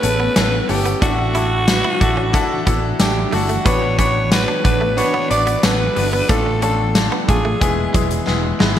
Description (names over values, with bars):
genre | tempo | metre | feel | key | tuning
1980s-style pop | 91 BPM | 4/4 | straight | unclear | A4 = 441 Hz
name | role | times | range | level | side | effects
raspy alto saxophone | melody | 0.0-8.2 s | F#4 to D5 | -21 LUFS | right 1 dB | digital delay
soft synth bell | second line | 0.0-8.2 s | F#5 to D6 | -32 LUFS | right 4 dB | none
bright grand piano | accompaniment | 0.0-8.8 s | A2 to D5 | -22 LUFS | left 3 dB | none
granular cloud pad | sustained chords | 0.0-8.8 s | E3 to E4 | -28 LUFS | right 1 dB | none
direct-recorded clean electric guitar | riff | 0.0-8.7 s | F#3 to E4 | -28 LUFS | right 4 dB | analog chorus
fretless electric bass | bass | 0.0-8.8 s | E1 to A1 | -22 LUFS | equal | wide subtle chorus
big rock drum kit | drums | 0.0-8.8 s | hi-hat, kick drum, snare drum, tambourine | -19 LUFS | equal | gated reverb
room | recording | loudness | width
moderate lush hall reverb, RT60 1.6 s, studio reverb | bright 1980s-style digital production | -14 LUFS | side -10 dB against mid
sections
0.0-8.8 A section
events
drum fill 8.3-8.8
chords
0.0 Aadd9; 1.0 Dadd9/A; 6.3 Dm/A; 7.6 E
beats
0.36 | 1.02 1.68 2.34 3.00 | 3.66 4.32 4.98 5.64 | 6.29 6.95 7.61 8.27